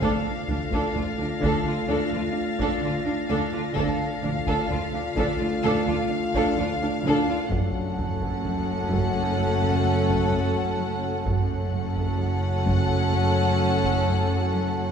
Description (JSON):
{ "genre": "cinematic, suspense film score", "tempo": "64 BPM", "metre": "4/4", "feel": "straight", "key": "unclear", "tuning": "A4 = 438 Hz", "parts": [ { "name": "warm chamber violin section", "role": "melody", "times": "0.0-14.9 s", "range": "F5 to F#5", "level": "-32 LUFS", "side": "left 4 dB", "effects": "none" }, { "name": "warm chamber violin section", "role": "second line", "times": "0.0-14.9 s", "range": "D4 to A4", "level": "-31 LUFS", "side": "equal", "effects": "none" }, { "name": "dark chamber viola section", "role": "accompaniment", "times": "0.0-14.9 s", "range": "C#4 to D4", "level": "-31 LUFS", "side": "right 3 dB", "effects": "none" }, { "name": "glass harmonica", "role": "sustained chords", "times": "0.0-14.9 s", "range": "F4 to A5", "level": "-36 LUFS", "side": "right 1 dB", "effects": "none" }, { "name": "mellow French horn section", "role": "sustained chords", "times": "0.0-14.8 s", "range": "A3 to F#4", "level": "-31 LUFS", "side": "left 3 dB", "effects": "none" }, { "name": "warm chamber cello section", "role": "riff", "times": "0.0-14.8 s", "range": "F#2 to D4", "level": "-32 LUFS", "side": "right 1 dB", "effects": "none" }, { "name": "warm chamber double bass section", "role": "bass", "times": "0.0-14.9 s", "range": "F#1 to D2", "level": "-30 LUFS", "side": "right 1 dB", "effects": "none" }, { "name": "warm symphonic cello section", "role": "bass", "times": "0.0-14.9 s", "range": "D2 to F#2", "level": "-30 LUFS", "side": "right 1 dB", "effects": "none" }, { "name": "taiko ensemble", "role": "drums", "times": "0.0-14.7 s", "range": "none", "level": "-34 LUFS", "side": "equal", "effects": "none" }, { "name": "warm chamber violin section", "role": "texture", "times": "0.0-7.0 s", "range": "A6 to Bb6", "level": "-41 LUFS", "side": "left 4 dB", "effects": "none" } ], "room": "wet scoring stage reverb, RT60 1.9 s", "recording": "heard from further back in the room", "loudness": "-22 LUFS", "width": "side -7 dB against mid", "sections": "0.0-14.9 A section", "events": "none", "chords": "0.0 Dm; 7.5 F#m", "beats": "| 0.01 0.95 1.89 2.83 | 3.76 4.70 5.64 6.58 | 7.51 8.45 9.39 10.32 | 11.26 12.20 13.14 14.07" }